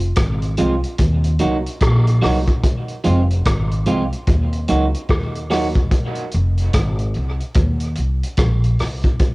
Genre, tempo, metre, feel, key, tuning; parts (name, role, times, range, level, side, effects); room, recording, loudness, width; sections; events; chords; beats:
dub reggae; 73 BPM; 4/4; swing 61% on 16ths; Eb dorian; A4 = 440 Hz
upright bass; bass; 0.0-9.0 s; F1 to Eb2; -18 LUFS; equal; tube saturation
vintage drum kit; drums; 0.0-9.3 s; hi-hat, kick drum, rim click; -19 LUFS; equal; cassette tape
electric guitar at the edge of break-up; accompaniment; 0.6-5.7 s; F3 to Gb4; -22 LUFS; right 2 dB; cassette tape, dub echo
light reverb, small room reverb; home recording on cassette; -16 LUFS; side -23 dB against mid
0.0-9.3 A section
0.0 Fm; 1.0 Ebm; 2.6 Fm; 4.3 Ebm; 5.9 Fm; 7.6 Eb5
0.17 0.99 1.81 | 2.63 3.46 4.28 5.10 | 5.92 6.74 7.56 8.38 | 9.20